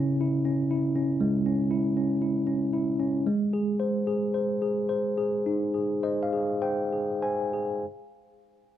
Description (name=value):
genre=pop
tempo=48-61 BPM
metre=4/4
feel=straight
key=Ab major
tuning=A4 = 438 Hz
part: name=tine electric piano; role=accompaniment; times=0.0-7.9 s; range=Db3 to Ab5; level=-24 LUFS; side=equal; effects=medium stereo tremolo
room=digital ambience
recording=dry, close 1970s-style studio recording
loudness=-24 LUFS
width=side -11 dB against mid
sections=0.0-7.8 A section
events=slowing down 0.0-7.8; tine electric piano fill 5.5-7.8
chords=0.0 Dbm; 3.3 Ab